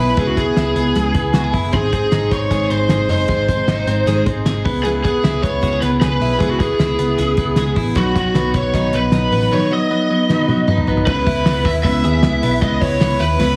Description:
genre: jangly indie pop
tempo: 154 BPM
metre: 4/4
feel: straight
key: C# minor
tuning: A4 = 440 Hz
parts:
  - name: lead guitar through a small cranked amp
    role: melody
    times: 0.0-13.6 s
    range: F#4 to E5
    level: -22 LUFS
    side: equal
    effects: overdrive, digital delay
  - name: picked steel-string acoustic guitar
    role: accompaniment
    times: 0.0-13.6 s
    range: G#2 to B4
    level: -25 LUFS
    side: equal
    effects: none
  - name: twelve-string electric guitar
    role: arpeggios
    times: 0.0-13.6 s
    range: F#3 to G#4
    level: -23 LUFS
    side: equal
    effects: digital delay
  - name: vintage muted picked electric bass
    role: bass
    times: 0.0-13.6 s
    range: F#1 to D#2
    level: -23 LUFS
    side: equal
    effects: none
  - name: cloth-damped thuddy drum kit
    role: drums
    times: 0.2-13.5 s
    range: crash cymbal, hi-hat, kick drum, snare drum, toms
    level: -22 LUFS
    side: equal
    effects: none
room: light reverb, studio reverb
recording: heavily compressed radio sound, multiband compression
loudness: -17 LUFS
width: mono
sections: 0.0-11.1 A section; 11.1-13.6 B section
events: drum fill 10.3-11.1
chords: 0.0 C#m7; 1.7 G#; 4.7 C#m7; 8.0 B; 11.1 C#m7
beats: | 0.17 0.56 0.95 1.34 | 1.73 2.12 2.51 2.90 | 3.29 3.68 4.07 4.46 | 4.85 5.24 5.63 6.02 | 6.41 6.79 7.18 7.57 | 7.96 8.35 8.74 9.13 | 9.52 9.91 10.29 10.68 | 11.07 11.46 11.85 12.23 | 12.62 13.01 13.40

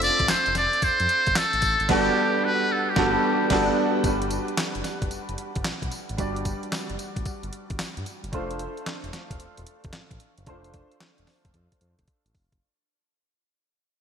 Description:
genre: R&B, new jack swing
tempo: 112 BPM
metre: 4/4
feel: swing 66% on 16ths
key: G major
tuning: A4 = 441 Hz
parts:
  - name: trumpet with metal mute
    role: melody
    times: 0.0-3.7 s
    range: G4 to D5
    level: -23 LUFS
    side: equal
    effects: shimmer reverb
  - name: clear baby grand piano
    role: accompaniment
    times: 0.0-12.6 s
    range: G3 to D5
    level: -26 LUFS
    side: right 1 dB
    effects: ensemble chorus, shimmer reverb
  - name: smooth gliding synth bass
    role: bass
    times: 0.0-12.6 s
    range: E1 to G2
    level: -34 LUFS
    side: equal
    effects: none
  - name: crisp 8-bit digital drum machine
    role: drums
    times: 0.0-12.6 s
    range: crash cymbal, handclaps, hi-hat, kick drum, snare drum, tambourine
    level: -29 LUFS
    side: equal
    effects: overdrive
room: wet lush hall reverb, RT60 1.9 s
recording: bright 1980s-style digital production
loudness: -22 LUFS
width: side -7 dB against mid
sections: 0.0-4.0 A section; 4.0-12.6 B section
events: band accent 1.9-4.0; fade-out 4.0-12.6; drum fill 11.5-12.6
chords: 0.0 F6; 1.9 Gmaj9; 4.0 Gmaj7; 8.3 F6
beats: 0.29 0.83 1.36 | 1.90 2.43 2.97 3.51 | 4.04 4.58 5.11 5.65 | 6.18 6.72 7.26 7.79 | 8.33 8.86 9.40 9.93 | 10.47 11.01 11.54 12.08

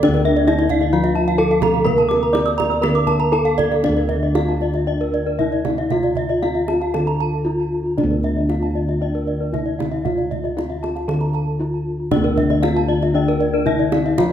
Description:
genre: Balinese gamelan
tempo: 116 BPM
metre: 4/4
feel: straight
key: D pelog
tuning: A4 = 445 Hz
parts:
  - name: gamelan-type bronze metallophone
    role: melody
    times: 0.0-14.3 s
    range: D4 to D5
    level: -21 LUFS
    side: left 1 dB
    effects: tape echo
  - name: gamelan-type bronze metallophone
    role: accompaniment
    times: 0.0-3.8, 12.1-14.3 s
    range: D3 to Bb3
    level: -24 LUFS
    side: left 2 dB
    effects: none
  - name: gamelan-type bronze metallophone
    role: arpeggios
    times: 0.0-14.3 s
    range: Bb4 to Eb6+35c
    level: -26 LUFS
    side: left 6 dB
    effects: none
  - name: gamelan-type bossed gongs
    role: bass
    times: 0.0-14.3 s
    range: D2 to Bb4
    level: -21 LUFS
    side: equal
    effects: none
  - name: kendang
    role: percussion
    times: 0.0-14.3 s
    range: none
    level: -27 LUFS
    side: right 6 dB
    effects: none
  - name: gamelan-type bronze metallophone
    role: arpeggios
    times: 0.1-14.2 s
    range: Bb4 to Eb6+35c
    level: -25 LUFS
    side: right 5 dB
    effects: tape echo
room: moderate recital hall reverb, RT60 1.3 s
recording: none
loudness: -16 LUFS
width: side -10 dB against mid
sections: 0.0-3.8 A section; 3.8-14.3 B section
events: none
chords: none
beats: | 0.03 0.48 0.93 1.39 | 1.86 2.34 2.83 3.33 | 3.84 4.36 4.87 5.39 | 5.91 6.42 6.94 7.46 | 7.98 8.49 9.01 9.53 | 10.05 10.56 11.08 11.60 | 12.12 12.63 13.15 13.67 | 14.18

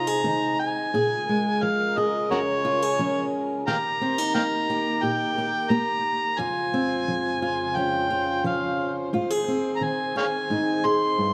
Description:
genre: acoustic folk-pop ballad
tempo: 88 BPM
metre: 4/4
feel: straight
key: Bb dorian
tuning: A4 = 442 Hz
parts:
  - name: overdriven harmonica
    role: melody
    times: 0.0-11.3 s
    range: Gb4 to C6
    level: -27 LUFS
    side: equal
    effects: none
  - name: fingerpicked steel-string acoustic guitar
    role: accompaniment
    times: 0.0-11.3 s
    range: F2 to Ab4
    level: -28 LUFS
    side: equal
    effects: none
  - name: muted chamber string section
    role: sustained chords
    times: 0.0-11.3 s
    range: F2 to C5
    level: -37 LUFS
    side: equal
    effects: none
room: moderate recital hall reverb, RT60 1.6 s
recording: none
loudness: -25 LUFS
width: mono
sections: 0.0-11.3 A section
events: none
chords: 0.0 Ab; 0.9 Bbm7; 3.7 Eb; 6.4 Dbmaj7/F; 9.1 Ab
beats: 0.25 | 0.93 1.62 2.30 2.98 | 3.66 4.35 5.03 5.71 | 6.39 7.08 7.76 8.45 | 9.13 9.81 10.50 11.18

